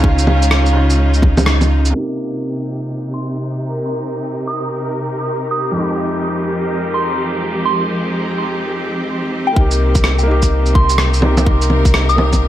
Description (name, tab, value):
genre	future garage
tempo	126 BPM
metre	4/4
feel	swing 63% on 16ths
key	C phrygian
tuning	A4 = 440 Hz
part	felt-muted upright piano	accompaniment	0.0-12.5 s	F2 to G4	-22 LUFS	equal	vintage 12-bit sampler grit, sidechain pumping, digital delay
part	bright studio string section	sustained chords	0.0-12.5 s	C3 to Bb4	-21 LUFS	equal	vintage 12-bit sampler grit, sidechain pumping
part	warm sub bass	bass	0.0-1.9, 9.6-12.5 s	C2 to Db2	-14 LUFS	equal	sidechain pumping
part	electronic kick drum	drums	0.0-1.4, 9.6-12.4 s	none	-14 LUFS	equal	overdrive
part	electronic shaker, bongos and rim click	drums	0.2-1.9, 9.7-12.4 s	none	-18 LUFS	right 1 dB	none
part	backwards swelling texture	texture	3.7-9.6 s	Bb4	-28 LUFS	equal	built-in reverb
part	soft synth bell	melody	3.1-12.3 s	G5 to Eb6	-22 LUFS	right 1 dB	chorus, phaser, digital delay
room	light reverb, digital ambience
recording	vinyl crackle, low-pass filter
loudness	-14 LUFS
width	side -12 dB against mid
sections	0.0-1.9 A section; 1.9-9.6 B section; 9.6-12.5 C section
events	band accent 1.5; filter sweep 1.9-9.6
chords	0.0 Dbadd9; 1.9 Cm7; 5.8 Fm7; 9.6 Cm7